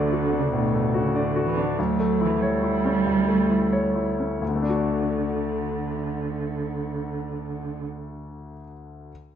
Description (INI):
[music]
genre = quick classical-period movement for piano quartet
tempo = 86-99 BPM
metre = 4/4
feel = rubato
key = D major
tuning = A4 = 440 Hz
[part]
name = dark cello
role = second line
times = 0.0-7.8 s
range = B2 to G3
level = -26 LUFS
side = right 5 dB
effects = none
[part]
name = bright grand piano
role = accompaniment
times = 0.0-9.1 s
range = D2 to D5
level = -25 LUFS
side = left 3 dB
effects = none
[sound]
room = wet recital hall reverb, RT60 1.7 s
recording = nothing above 8.0 kHz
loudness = -22 LUFS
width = side -9 dB against mid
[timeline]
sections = 0.0-4.4 A section; 4.4-7.1 B section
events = slowing down 0.0-4.4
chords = 0.0 D; 1.8 A7/D; 4.4 D